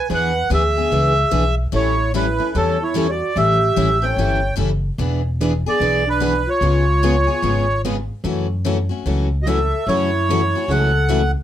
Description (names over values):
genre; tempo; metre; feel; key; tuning
acoustic string swing (jazz manouche); 147 BPM; 4/4; swing 62% on 8ths; E mixolydian; A4 = 440 Hz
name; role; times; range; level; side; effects
accordion; melody; 0.0-11.3 s; A4 to G5; -20 LUFS; right 1 dB; none
bansuri; second line; 0.0-11.3 s; D4 to C#5; -24 LUFS; right 1 dB; none
picked plugged-in steel-string acoustic guitar; accompaniment; 0.1-11.2 s; C#3 to B4; -26 LUFS; right 2 dB; none
picked steel-string acoustic guitar; accompaniment; 0.1-11.2 s; C#3 to A4; -24 LUFS; left 7 dB; none
upright bass; bass; 0.1-11.3 s; E1 to F#2; -20 LUFS; equal; none
room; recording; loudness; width
moderate club reverb, RT60 0.6 s; none; -16 LUFS; side -11 dB against mid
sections
0.0-11.4 A section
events
none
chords
0.0 E7; 1.7 A7; 5.0 E7; 6.6 C#7; 8.3 F#m7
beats
| 0.10 0.50 0.91 1.32 | 1.73 2.14 2.55 2.96 | 3.36 3.77 4.18 4.59 | 5.00 5.40 5.81 6.22 | 6.62 7.03 7.44 7.84 | 8.25 8.66 9.06 9.47 | 9.88 10.28 10.69 11.09